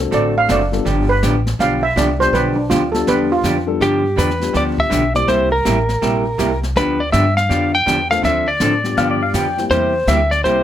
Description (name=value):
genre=country, western swing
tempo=163 BPM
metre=4/4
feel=swing 64% on 8ths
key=G mixolydian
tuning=A4 = 441 Hz
part: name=dark upright piano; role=accompaniment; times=0.0-5.3, 8.1-9.7 s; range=G3 to A4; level=-23 LUFS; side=left 7 dB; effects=none
part: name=upright bass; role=bass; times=0.0-10.6 s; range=F#1 to A2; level=-21 LUFS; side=equal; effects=none
part: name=steel pan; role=second line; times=0.1-3.4 s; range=D4 to F5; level=-18 LUFS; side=right 3 dB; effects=none
part: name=vintage hollow-body jazz guitar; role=accompaniment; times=0.1-10.6 s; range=C3 to A4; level=-20 LUFS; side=right 1 dB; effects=none
part: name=jazz brush drum kit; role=drums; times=0.1-10.6 s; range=brushed snare drum, hi-hat, kick drum, snare drum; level=-26 LUFS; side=left 1 dB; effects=none
part: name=clean lap steel guitar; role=melody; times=3.8-10.6 s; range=G4 to G5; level=-17 LUFS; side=equal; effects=none
part: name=pedal steel guitar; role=second line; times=9.0-9.6 s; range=D5 to G5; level=-20 LUFS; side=left 4 dB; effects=none
room=moderate studio ambience, RT60 0.5 s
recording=none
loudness=-14 LUFS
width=side -11 dB against mid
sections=0.0-3.8 A section; 3.8-10.6 B section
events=steel pan solo 0.0-3.8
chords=0.0 D7; 0.9 G7; 5.3 C7; 6.8 G7; 8.2 Dm7; 9.0 G7; 9.7 C7